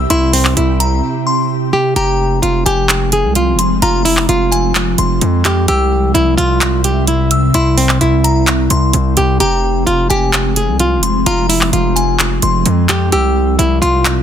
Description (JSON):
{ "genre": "hip hop, trap", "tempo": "129 BPM", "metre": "4/4", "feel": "half-time", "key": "F harmonic minor", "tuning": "A4 = 440 Hz", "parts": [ { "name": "delicate synth tine bell", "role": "second line", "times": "0.0-14.2 s", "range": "Ab5 to E6", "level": "-21 LUFS", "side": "left 5 dB", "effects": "chorus, digital delay" }, { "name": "ethereal airy pad", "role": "sustained chords", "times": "0.0-14.2 s", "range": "C3 to E5", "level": "-18 LUFS", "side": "right 1 dB", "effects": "ensemble chorus, built-in reverb" }, { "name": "distorted 808-style bass", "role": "bass", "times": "0.0-14.2 s", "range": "F1 to F2", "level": "-16 LUFS", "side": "equal", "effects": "distortion" }, { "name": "flamenco guitar", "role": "melody", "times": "0.1-14.2 s", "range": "C4 to Ab4", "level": "-16 LUFS", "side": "equal", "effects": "digital delay" }, { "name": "trap drum kit", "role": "drums", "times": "0.1-14.2 s", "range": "handclaps, hi-hat", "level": "-15 LUFS", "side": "right 1 dB", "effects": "none" } ], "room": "little or no reverb", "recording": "dense, heavily limited modern master", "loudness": "-11 LUFS", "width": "side -9 dB against mid", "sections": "0.0-2.0 A section; 2.0-14.2 A section", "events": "break 1.0-2.0", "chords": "0.0 C; 2.0 Fmadd9; 5.7 C; 9.4 Fmadd9; 13.1 C" }